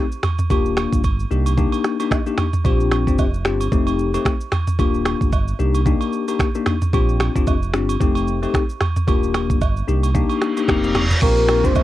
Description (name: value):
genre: afrobeats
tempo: 112 BPM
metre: 4/4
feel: swing 58% on 16ths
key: Bb major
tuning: A4 = 441 Hz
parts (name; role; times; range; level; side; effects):
- bell-like tine electric piano; accompaniment; 0.0-11.8 s; A3 to G4; -22 LUFS; left 6 dB; phaser, cassette tape, plate reverb
- afro-pop drum kit; drums; 0.1-11.8 s; crash cymbal, finger snaps, kick drum, rim click, shaker, toms; -19 LUFS; right 1 dB; cassette tape
- agogo bells and woodblock; percussion; 0.2-11.8 s; none; -29 LUFS; right 10 dB; none
- sub bass with octave; bass; 0.5-11.8 s; Eb1 to C2; -21 LUFS; right 1 dB; none
- reverse cymbal and downlifter; sound effects; 10.4-11.8 s; none; -26 LUFS; right 1 dB; none
- soft octave-layered synth lead; melody; 11.2-11.8 s; Bb4 to C5; -18 LUFS; equal; chorus, plate reverb
room: light reverb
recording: home recording on cassette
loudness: -16 LUFS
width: side -14 dB against mid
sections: 0.0-11.2 A section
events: reverse cymbal 10.4-11.2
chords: 0.0 N.C.; 0.5 Ebmaj7; 1.3 Cm7; 2.6 Bb6; 3.7 F7; 4.8 Ebmaj7; 5.6 Cm7; 6.9 Bb6; 8.0 F7; 9.1 Ebmaj7; 9.9 Cm7; 10.7 F7sus4; 11.2 Bb6